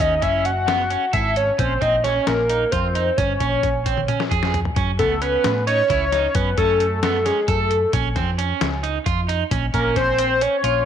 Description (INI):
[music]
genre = progressive instrumental, band music in an uneven meter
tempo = 265 BPM (eighths)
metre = 7/8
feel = straight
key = unclear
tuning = A4 = 441 Hz
[part]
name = hollow square lead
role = melody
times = 0.0-10.9 s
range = G#4 to F#5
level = -20 LUFS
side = left 1 dB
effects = chorus
[part]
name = electric guitar at the edge of break-up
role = arpeggios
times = 0.0-10.9 s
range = B3 to A4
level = -25 LUFS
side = right 10 dB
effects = none
[part]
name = hollow-body short-scale fingered electric bass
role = bass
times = 0.0-10.9 s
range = F#1 to A2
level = -25 LUFS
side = equal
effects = none
[part]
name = lo-fi sampler-style drum kit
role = drums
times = 0.0-10.7 s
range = hi-hat, kick drum, snare drum, toms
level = -25 LUFS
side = left 2 dB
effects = overdrive
[sound]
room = moderate plate reverb, RT60 1.6 s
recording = 1960s-style stereo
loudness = -18 LUFS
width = side -9 dB against mid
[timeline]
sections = 0.0-4.8 A section; 4.8-10.9 B section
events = drum fill 3.9-4.8; analog synth lead solo 4.8-10.9; kick and snare drop out 10.2-10.9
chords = 0.0 F#m; 1.6 A#madd9; 4.8 F#m; 7.9 A#madd9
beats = | 0.00 0.23 0.46 0.68 0.91 1.14 1.36 | 1.59 1.82 2.05 2.27 2.50 2.73 2.96 | 3.18 3.41 3.64 3.86 4.09 4.32 4.54 | 4.77 5.00 5.22 5.45 5.67 5.90 6.13 | 6.35 6.58 6.81 7.03 7.26 7.48 7.71 | 7.93 8.16 8.39 8.61 8.84 9.06 9.29 | 9.52 9.74 9.97 10.19 10.42 10.64